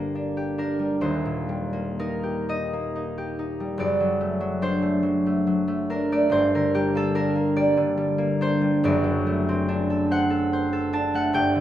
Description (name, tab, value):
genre	classical, solo harp piece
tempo	40-48 BPM (dotted quarters)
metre	6/8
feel	rubato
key	unclear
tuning	A4 = 441 Hz
part	concert harp	solo	0.0-11.6 s	Eb1 to A5	-21 LUFS	equal	none
room	moderate recital hall reverb, RT60 1.7 s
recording	none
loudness	-21 LUFS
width	side -12 dB against mid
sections	0.0-11.6 A section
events	none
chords	0.0 Gm; 1.0 Eb; 3.8 D/F#; 6.3 Gm; 8.8 D7/F#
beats	| 1.01 2.46 | 3.77 5.03 | 6.32 7.58 | 8.84 10.10 | 11.34